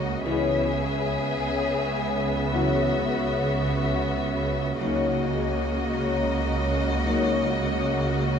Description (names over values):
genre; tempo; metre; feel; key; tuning
cinematic, suspense film score; 53 BPM; 4/4; straight; unclear; A4 = 440 Hz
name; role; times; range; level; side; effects
muted symphonic violin section; melody; 0.0-8.4 s; D#5 to E5; -32 LUFS; left 5 dB; none
muted symphonic violin section; second line; 0.0-8.4 s; F#4 to G#4; -33 LUFS; left 4 dB; none
muted symphonic viola section; accompaniment; 0.0-8.4 s; A#3 to B3; -32 LUFS; equal; none
glass harmonica; sustained chords; 0.0-8.4 s; F#4 to E5; -36 LUFS; right 1 dB; none
Celtic harp; riff; 0.0-8.4 s; C#3 to C#4; -29 LUFS; left 4 dB; none
muted symphonic cello section; bass; 0.0-8.4 s; C#3; -31 LUFS; right 5 dB; none
muted symphonic double bass section; bass; 0.0-8.4 s; C#2; -31 LUFS; right 4 dB; none
swarming drone; drone; 0.0-8.4 s; C#2; -35 LUFS; left 1 dB; built-in reverb
Celtic harp; texture; 0.0-8.4 s; F#4 to A#5; -38 LUFS; left 8 dB; none
clear trombone section; sustained chords; 0.3-7.5 s; E3 to G#3; -35 LUFS; right 2 dB; none
dark French horn section; sustained chords; 0.3-7.5 s; A#3 to E4; -32 LUFS; left 5 dB; none
room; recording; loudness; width
moderate scoring stage reverb, RT60 1.8 s; dark, warm production; -22 LUFS; side -7 dB against mid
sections
0.0-8.4 A section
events
none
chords
0.3 C#m7; 2.5 Bsus4/C#; 4.8 D#m/C#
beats
| 0.27 1.40 2.53 3.66 | 4.79 5.93 7.06 8.19